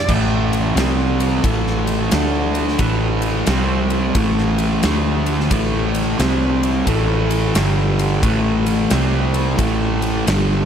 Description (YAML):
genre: blues rock power trio and southern rock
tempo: 88 BPM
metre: 4/4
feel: swing 64% on 8ths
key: A minor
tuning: A4 = 440 Hz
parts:
  - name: vintage muted fingered electric bass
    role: bass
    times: 0.0-10.7 s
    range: G1 to D2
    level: -22 LUFS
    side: equal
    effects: none
  - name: fuzz guitar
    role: riff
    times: 0.1-10.7 s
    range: G2 to D4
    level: -18 LUFS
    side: equal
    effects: distortion
  - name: huge arena drum kit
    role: drums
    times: 0.1-10.5 s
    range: crash cymbal, kick drum, ride cymbal, snare drum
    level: -22 LUFS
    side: equal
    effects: none
room: moderate lush hall reverb, RT60 2.9 s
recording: big arena sound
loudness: -15 LUFS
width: side -8 dB against mid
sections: 0.1-10.7 A section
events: none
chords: 0.1 A5; 0.8 C5; 1.4 A5; 2.1 D5; 2.8 A5; 3.5 C5; 4.2 A5; 4.8 D5; 5.5 A5; 6.2 C5; 6.9 A5; 7.6 G5; 8.2 A5; 8.9 C5; 9.6 A5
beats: | 0.08 0.76 1.44 2.12 | 2.80 3.48 4.16 4.84 | 5.52 6.20 6.88 7.56 | 8.23 8.91 9.59 10.27